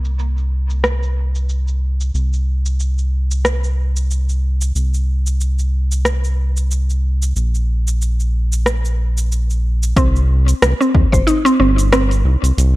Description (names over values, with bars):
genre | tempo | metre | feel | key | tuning
organic downtempo | 92 BPM | 4/4 | swing 56% on 16ths | C minor | A4 = 440 Hz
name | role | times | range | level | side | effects
round analog bass | bass | 0.0-12.8 s | G1 to Eb2 | -16 LUFS | equal | none
deep house drum kit | drums | 0.0-12.7 s | hi-hat, rim click, shaker | -20 LUFS | equal | overdrive, low-pass filter on hats, small room reverb, low-pass filter on perc, low-pass filter on snare
mallet-like synth pluck | arpeggios | 10.0-12.1 s | C4 to C5 | -17 LUFS | equal | chorus, ping-pong delay
electronic kick drum | drums | 10.0-11.2 s | none | -15 LUFS | equal | overdrive, small room reverb
room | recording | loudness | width
digital ambience | dark, warm production | -15 LUFS | side -18 dB against mid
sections
0.0-10.0 A section; 10.0-12.8 B section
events
filter sweep on drum 0.0-10.0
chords
0.0 N.C.; 10.0 Cm